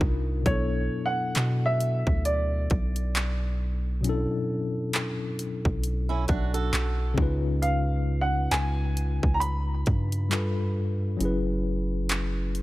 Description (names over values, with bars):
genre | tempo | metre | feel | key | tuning
contemporary R&B | 67 BPM | 4/4 | swing 58% on 16ths | unclear | A4 = 439 Hz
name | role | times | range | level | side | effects
tine electric piano | accompaniment | 0.0-12.6 s | B2 to B4 | -30 LUFS | left 2 dB | medium stereo tremolo
long sustained 808-style bass | bass | 0.0-12.6 s | F#1 to B2 | -27 LUFS | equal | none
trap drum kit | drums | 0.0-12.6 s | handclaps, hi-hat, kick drum | -28 LUFS | equal | overdrive
warm baby grand piano | melody | 0.5-10.7 s | C#5 to B5 | -30 LUFS | right 2 dB | digital delay
fingerpicked swing-style acoustic guitar | arpeggios | 6.1-7.1 s | C#4 to A4 | -34 LUFS | right 6 dB | digital delay
room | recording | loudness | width
little or no reverb | none | -24 LUFS | side -17 dB against mid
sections
0.0-12.6 A section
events
none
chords
0.5 Bm11; 7.2 C#9; 10.3 G9; 11.2 F#9sus4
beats
| 0.46 1.35 2.25 3.15 | 4.04 4.94 5.83 6.73 | 7.62 8.52 9.41 10.31 | 11.21 12.10